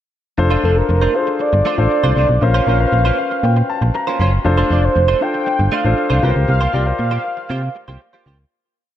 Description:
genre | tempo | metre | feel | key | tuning
pop | 118 BPM | 4/4 | straight | F major | A4 = 442 Hz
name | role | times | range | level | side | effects
warm baby grand piano | accompaniment | 0.4-8.5 s | Db4 to C6 | -20 LUFS | left 3 dB | none
direct-recorded clean electric guitar | riff | 0.4-8.4 s | A3 to C5 | -24 LUFS | right 4 dB | analog chorus
solid FM bass | bass | 0.4-8.5 s | F1 to C3 | -16 LUFS | equal | none
warm velvety synth lead | melody | 0.6-8.0 s | A4 to G5 | -20 LUFS | right 1 dB | chorus, ping-pong delay
room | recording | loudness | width
light reverb | none | -14 LUFS | side -11 dB against mid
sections
0.4-8.5 verse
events
grand piano fill 2.9-4.5; fade-out 6.5-8.5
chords
0.4 F6; 2.4 Bbmadd9; 4.5 F6; 6.2 C7sus4

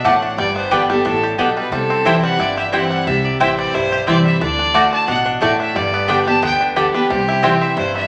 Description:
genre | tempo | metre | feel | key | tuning
bluegrass | 179 BPM | 4/4 | straight | unclear | A4 = 441 Hz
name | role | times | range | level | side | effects
bluegrass banjo | melody | 0.0-8.1 s | G3 to G4 | -26 LUFS | equal | none
clear fiddle | melody | 0.0-8.1 s | G4 to A5 | -22 LUFS | equal | none
picked steel-string acoustic guitar | accompaniment | 0.0-8.1 s | G2 to G4 | -22 LUFS | equal | none
mandolin | stabs | 0.0-7.5 s | A3 to A5 | -21 LUFS | equal | none
upright bass | bass | 0.0-8.1 s | G1 to D2 | -31 LUFS | equal | none
room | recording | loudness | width
wet large studio reverb, RT60 1.2 s | none | -16 LUFS | mono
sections
0.0-8.1 A section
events
none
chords
0.4 G; 1.7 C; 4.4 D; 5.8 G; 7.1 C

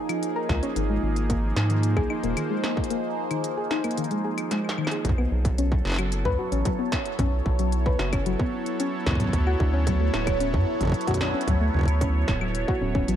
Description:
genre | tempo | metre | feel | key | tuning
IDM | 112 BPM | 4/4 | straight | unclear | A4 = 442 Hz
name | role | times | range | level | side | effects
phased analog pad | sustained chords | 0.0-13.2 s | E#3 to C#5 | -29 LUFS | right 2 dB | phaser, chorus
soft round pluck | arpeggios | 0.1-13.2 s | D#3 to B4 | -29 LUFS | left 3 dB | chorus, tape echo
industrial drum kit | drums | 0.1-13.2 s | claves, hi-hat, snare drum, toms | -32 LUFS | equal | none
round analog bass | bass | 0.5-13.2 s | D1 to G#2 | -24 LUFS | equal | none
electronic kick drum | drums | 0.5-13.1 s | none | -27 LUFS | equal | distortion
room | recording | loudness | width
light reverb, digital ambience | dark, warm production | -22 LUFS | side -10 dB against mid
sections
0.0-5.0 A section; 5.0-13.2 B section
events
break 2.9-5.0; drum fill 4.5-5.0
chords
0.0 A#m; 0.8 G#sus2; 5.0 Bsus2; 9.3 Dmaj7

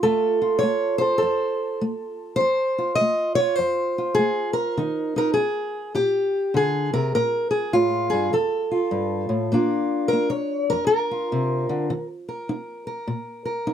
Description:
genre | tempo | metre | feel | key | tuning
acoustic country blues, solo or duo | 101 BPM | 4/4 | swing 63% on 8ths | Bb major | A4 = 442 Hz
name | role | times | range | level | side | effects
fingerpicked steel-string acoustic guitar | solo | 0.0-13.7 s | F2 to Eb5 | -20 LUFS | equal | none
room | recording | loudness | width
light reverb | close, detailed microphones | -20 LUFS | side -9 dB against mid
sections
0.0-9.5 A section; 9.5-13.7 B section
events
steel-string acoustic guitar solo 9.5-13.7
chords
0.0 F; 4.8 Eb; 7.1 Bb5; 8.3 F; 9.5 Bb; 11.9 Eb5

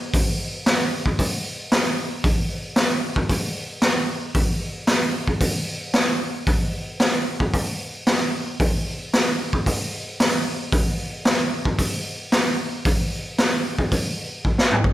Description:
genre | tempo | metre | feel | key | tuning
rock | 113 BPM | 4/4 | straight | none | none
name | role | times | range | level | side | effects
raw garage drum kit | drums | 0.1-14.9 s | hi-hat, kick drum, snare drum, toms | -20 LUFS | equal | none
room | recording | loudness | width
light reverb | none | -20 LUFS | side -14 dB against mid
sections
0.0-14.9 A section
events
drum fill 14.4-14.9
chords
none

